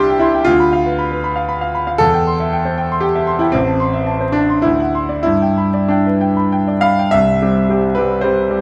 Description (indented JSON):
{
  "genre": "classical, romantic character piece for solo piano",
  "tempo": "94-122 BPM",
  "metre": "3/4",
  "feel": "rubato",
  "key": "C major",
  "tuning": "A4 = 440 Hz",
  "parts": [
    { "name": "bright grand piano", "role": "solo", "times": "0.0-8.6 s", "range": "A1 to C6", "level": "-16 LUFS", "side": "equal", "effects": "none" }
  ],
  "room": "moderate recital hall reverb, RT60 1.6 s",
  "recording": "close, detailed microphones, vinyl crackle",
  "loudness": "-16 LUFS",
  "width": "mono",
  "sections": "0.0-7.1 A section; 7.1-8.6 B section",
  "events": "none",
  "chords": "0.5 Bdim/D; 2.0 C/E; 3.5 Am; 4.6 D7; 5.3 G; 7.1 C",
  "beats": "| 0.49 0.99 1.49 | 2.01 2.52 3.03 | 3.54 4.07 4.64 | 5.25 5.89 6.51 | 7.13 7.69 8.24"
}